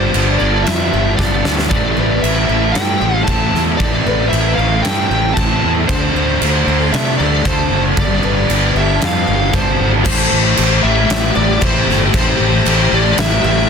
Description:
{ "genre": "rock, shoegaze and dream pop", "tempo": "115 BPM", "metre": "4/4", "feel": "straight", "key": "A minor", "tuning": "A4 = 440 Hz", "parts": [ { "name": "smooth overdriven lead guitar", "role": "melody", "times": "0.0-13.7 s", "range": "C5 to A5", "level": "-20 LUFS", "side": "equal", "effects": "analog delay" }, { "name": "string machine, violins", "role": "sustained chords", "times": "0.0-13.7 s", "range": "F4 to C6", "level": "-26 LUFS", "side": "equal", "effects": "ensemble chorus" }, { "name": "picked twelve-string acoustic guitar", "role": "arpeggios", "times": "0.0-13.7 s", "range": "G4 to D5", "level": "-27 LUFS", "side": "equal", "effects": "ensemble chorus, analog delay" }, { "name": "raw garage guitar", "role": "riff", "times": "0.0-10.1 s", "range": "G2 to F4", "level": "-22 LUFS", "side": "right 13 dB", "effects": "overdrive, reverse reverb" }, { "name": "thick fuzz guitar", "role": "riff", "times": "0.0-13.7 s", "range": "G2 to D4", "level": "-20 LUFS", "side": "left 12 dB", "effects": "distortion, analog chorus" }, { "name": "fuzz fingered electric bass", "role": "bass", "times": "0.0-13.6 s", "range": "F#1 to C3", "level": "-18 LUFS", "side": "equal", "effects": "overdrive" }, { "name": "huge arena drum kit", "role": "drums", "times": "0.1-13.3 s", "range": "crash cymbal, kick drum, snare drum", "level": "-17 LUFS", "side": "right 1 dB", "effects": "soft clipping on snare" } ], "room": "small room ambience", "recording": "dense, heavily limited modern master", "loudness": "-12 LUFS", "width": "side -6 dB against mid", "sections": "0.0-10.1 A section; 10.1-13.7 A section", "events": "drum fill 1.2-1.7", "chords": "0.0 G7sus4; 1.7 Am7; 5.9 Dm7; 8.0 G5; 10.1 Am7", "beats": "0.14 0.66 1.19 | 1.71 2.23 2.75 3.28 | 3.80 4.32 4.84 5.37 | 5.89 6.41 6.93 7.46 | 7.98 8.50 9.02 9.54 | 10.06 10.58 11.10 11.62 | 12.14 12.65 13.17 13.69" }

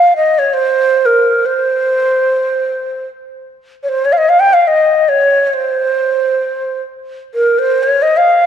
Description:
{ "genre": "Arabic maqam ensemble", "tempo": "free time", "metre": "none", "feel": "none", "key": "C maqam kurd", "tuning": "A4 = 440 Hz", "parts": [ { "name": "breathy reedy ney", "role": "solo", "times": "0.0-8.5 s", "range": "Bb4 to G5", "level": "-10 LUFS", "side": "equal", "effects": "none" } ], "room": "moderate concert hall reverb, RT60 2.4 s", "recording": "dark, warm production", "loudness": "-10 LUFS", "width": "side -8 dB against mid", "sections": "0.0-8.5 A section", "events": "none", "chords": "none", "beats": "free time" }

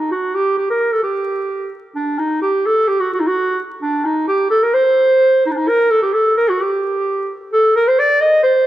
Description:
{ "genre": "klezmer", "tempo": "129 BPM", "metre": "2/4", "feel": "straight", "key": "unclear", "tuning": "A4 = 440 Hz", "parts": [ { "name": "warm clarinet", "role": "solo", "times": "0.0-8.7 s", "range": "D4 to Eb5", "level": "-14 LUFS", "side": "right 1 dB", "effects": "slapback echo" } ], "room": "moderate plate reverb, RT60 3.1 s", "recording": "worn, warbling old tape, cassette tape, vinyl crackle, warbly pitch drift", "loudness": "-14 LUFS", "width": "side -14 dB against mid", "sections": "0.0-5.7 A section; 5.7-8.7 B section", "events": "none", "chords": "none", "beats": "| 0.09 0.56 | 1.03 1.50 | 1.96 2.43 | 2.90 3.36 | 3.83 4.29 | 4.76 5.22 | 5.69 6.15 | 6.61 7.08 | 7.54 8.00 | 8.46" }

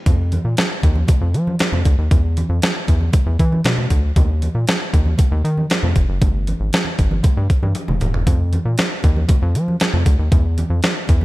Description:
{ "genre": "early-eighties boogie funk", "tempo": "117 BPM", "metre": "4/4", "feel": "straight", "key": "unclear", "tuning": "A4 = 440 Hz", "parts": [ { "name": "rubbery square bass", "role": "bass", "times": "0.1-11.2 s", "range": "Eb1 to F3", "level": "-17 LUFS", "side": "equal", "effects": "none" }, { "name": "crisp 8-bit digital drum machine", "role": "drums", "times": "0.1-11.2 s", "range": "hi-hat, kick drum, snare drum, toms", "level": "-16 LUFS", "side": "equal", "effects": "overdrive, gated reverb" }, { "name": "congas", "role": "percussion", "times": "0.1-11.2 s", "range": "none", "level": "-27 LUFS", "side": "right 2 dB", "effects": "none" } ], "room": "little or no reverb", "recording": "none", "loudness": "-15 LUFS", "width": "side -18 dB against mid", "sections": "0.1-11.2 A section", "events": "drum fill 7.8-8.3", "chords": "none", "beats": "| 0.06 0.57 1.09 1.60 | 2.11 2.63 3.14 3.65 | 4.17 4.68 5.19 5.70 | 6.22 6.73 7.24 7.75 | 8.27 8.78 9.29 9.81 | 10.32 10.83" }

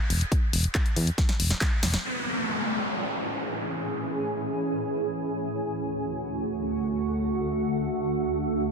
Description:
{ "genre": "uplifting trance", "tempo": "free time", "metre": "none", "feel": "none", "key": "A major", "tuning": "A4 = 440 Hz", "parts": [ { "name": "solid FM bass", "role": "bass", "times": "0.1-2.0 s", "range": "E1 to E2", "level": "-25 LUFS", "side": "equal", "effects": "sidechain pumping" }, { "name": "house drum kit", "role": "drums", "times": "0.1-2.0 s", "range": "handclaps, hi-hat, snare drum", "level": "-30 LUFS", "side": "left 1 dB", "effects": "none" }, { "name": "electronic kick drum", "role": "drums", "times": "0.3-1.7 s", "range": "none", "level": "-25 LUFS", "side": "equal", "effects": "none" }, { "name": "shimmering ambient pad", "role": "sustained chords", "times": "2.9-8.7 s", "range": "D2 to G#4", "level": "-27 LUFS", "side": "right 1 dB", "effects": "chorus, built-in reverb, sidechain pumping" }, { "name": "downlifter", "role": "sound effects", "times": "2.0-5.5 s", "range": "none", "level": "-30 LUFS", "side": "equal", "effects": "none" } ], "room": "light reverb", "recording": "dense, heavily limited modern master", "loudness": "-25 LUFS", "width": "side -5 dB against mid", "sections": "0.0-2.0 A section; 2.0-8.7 B section", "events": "drum fill 1.2-2.0; filter sweep on ambient pad 2.0-8.7", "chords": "0.0 N.C.; 2.0 Amaj7; 5.5 D", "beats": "free time" }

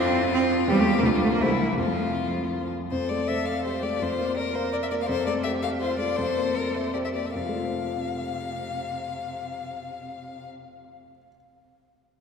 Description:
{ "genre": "quick classical-period movement for piano trio", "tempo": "142-169 BPM", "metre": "3/4", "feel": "rubato", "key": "F major", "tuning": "A4 = 440 Hz", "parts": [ { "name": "rich violin", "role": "melody", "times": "0.0-10.5 s", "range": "E4 to F5", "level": "-29 LUFS", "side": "left 6 dB", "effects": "none" }, { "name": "rich cello", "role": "second line", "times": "0.0-10.5 s", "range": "C3 to Bb4", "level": "-28 LUFS", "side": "right 3 dB", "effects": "none" }, { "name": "warm baby grand piano", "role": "accompaniment", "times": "0.0-11.3 s", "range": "C2 to F5", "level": "-28 LUFS", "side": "left 1 dB", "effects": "none" } ], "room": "wet church reverb, RT60 3.4 s", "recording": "none", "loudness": "-24 LUFS", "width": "side -6 dB against mid", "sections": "0.0-2.9 A section; 2.9-7.3 B section; 7.3-9.7 C section", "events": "slowing down 4.5-7.3", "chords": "0.0 F; 0.7 C/E; 1.1 Dm; 1.4 C7; 1.8 F; 4.0 Bb/F; 5.1 F; 6.2 C7/F; 7.3 F", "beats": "0.33 | 0.69 1.05 1.42 | 1.79 2.17 2.55 | 2.92 3.29 3.65 | 4.01 4.37 4.72 | 5.08 5.44 5.80 | 6.17 6.55 6.94 | 7.35 7.74 8.14 | 8.53 8.93 9.32" }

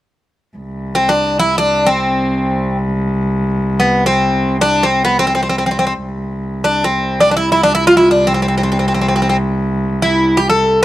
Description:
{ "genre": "turkish", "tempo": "free time", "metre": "none", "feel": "none", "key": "C makam rast", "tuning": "A4 = 444 Hz", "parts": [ { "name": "rich cello", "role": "drone", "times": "0.6-10.8 s", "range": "C2", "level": "-18 LUFS", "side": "equal", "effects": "stereo widening" }, { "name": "Greek bouzouki", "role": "melody", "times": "1.0-10.8 s", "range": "B3 to A4", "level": "-12 LUFS", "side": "equal", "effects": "none" } ], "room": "small room ambience", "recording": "dry, close 1970s-style studio recording", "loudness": "-12 LUFS", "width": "side -14 dB against mid", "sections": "0.6-10.8 A section", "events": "none", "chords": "none", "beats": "free time" }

